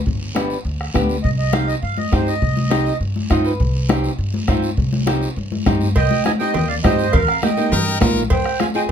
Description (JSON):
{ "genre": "latin, cumbia", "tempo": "204 BPM", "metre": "4/4", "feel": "straight", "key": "C harmonic minor", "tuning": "A4 = 440 Hz", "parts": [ { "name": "upright bass", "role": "bass", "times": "0.1-8.9 s", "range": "G1 to G2", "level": "-22 LUFS", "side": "equal", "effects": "none" }, { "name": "bombo", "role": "percussion", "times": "0.1-8.7 s", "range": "none", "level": "-21 LUFS", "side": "equal", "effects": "none" }, { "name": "congas", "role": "percussion", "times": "0.1-8.8 s", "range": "none", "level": "-24 LUFS", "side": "left 5 dB", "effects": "none" }, { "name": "guiro", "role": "percussion", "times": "0.1-8.9 s", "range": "none", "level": "-34 LUFS", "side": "right 2 dB", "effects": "none" }, { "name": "flamenco guitar", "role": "accompaniment", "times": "0.3-8.9 s", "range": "Bb3 to Eb5", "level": "-21 LUFS", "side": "right 1 dB", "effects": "none" }, { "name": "accordion", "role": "melody", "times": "1.2-3.0, 6.0-8.9 s", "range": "Bb4 to Ab5", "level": "-21 LUFS", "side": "right 5 dB", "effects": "none" }, { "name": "cowbell and timbales", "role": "percussion", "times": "6.0-8.9 s", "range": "none", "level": "-26 LUFS", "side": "right 2 dB", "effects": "none" }, { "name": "brilliant trumpet", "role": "second line", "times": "7.7-8.2 s", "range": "Bb4", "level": "-22 LUFS", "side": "left 5 dB", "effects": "none" } ], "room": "light reverb", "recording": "close, detailed microphones", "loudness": "-16 LUFS", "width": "side -8 dB against mid", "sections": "0.0-6.0 A section; 6.0-8.9 B section", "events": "nylon-string guitar fill 3.2-3.6", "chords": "0.0 G; 1.2 Cm; 7.1 Eb; 8.3 Fm", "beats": "| 0.07 0.36 0.66 0.95 | 1.24 1.54 1.83 2.13 | 2.42 2.72 3.01 3.31 | 3.60 3.90 4.19 4.49 | 4.78 5.08 5.37 5.66 | 5.96 6.25 6.55 6.84 | 7.13 7.43 7.72 8.02 | 8.31 8.60 8.90" }